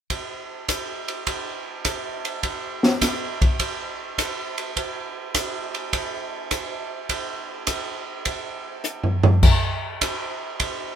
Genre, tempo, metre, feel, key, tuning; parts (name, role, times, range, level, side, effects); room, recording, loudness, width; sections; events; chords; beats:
jazz; 103 BPM; 4/4; swing 69% on 8ths
open jazz drum kit; drums; 0.1-10.8 s; crash cymbal, hi-hat, kick drum, ride cymbal, snare drum, toms; -22 LUFS; equal
light reverb; minimal, uncompressed stereo recording; -22 LUFS; side -9 dB against mid
0.1-11.0 A section
drum fill 8.8-9.4
| 0.10 0.69 1.27 1.85 | 2.43 3.02 3.60 4.18 | 4.77 5.35 5.93 6.51 | 7.10 7.68 8.26 8.85 | 9.43 10.01 10.60